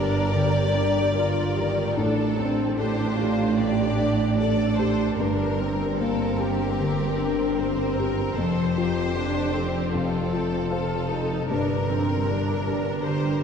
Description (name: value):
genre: cinematic, emotional film score for orchestra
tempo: 76 BPM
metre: 4/4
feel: rubato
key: G minor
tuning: A4 = 440 Hz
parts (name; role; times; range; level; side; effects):
- clear studio violin section; melody; 0.0-13.4 s; A4 to D5; -30 LUFS; left 3 dB; none
- clear studio violin section; second line; 0.0-13.4 s; F4 to C5; -34 LUFS; left 2 dB; none
- felt-muted upright piano; accompaniment; 0.0-13.4 s; F2 to C5; -28 LUFS; left 1 dB; none
- warm studio viola section; accompaniment; 0.0-13.4 s; Eb3 to G4; -31 LUFS; right 2 dB; none
- concert harp; arpeggios; 0.0-13.4 s; F2 to C5; -31 LUFS; left 6 dB; none
- rich studio cello section; bass; 0.0-13.4 s; F2 to A2; -28 LUFS; right 4 dB; none
- rich studio double bass section; bass; 0.0-13.4 s; F1 to A1; -30 LUFS; right 3 dB; none
room: wet church reverb, RT60 3.4 s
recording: dark, warm production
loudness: -22 LUFS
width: side -7 dB against mid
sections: 0.0-13.4 A section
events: none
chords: 0.0 Gm; 2.0 Dsus4/A; 5.2 Gm; 8.4 F; 11.5 Gm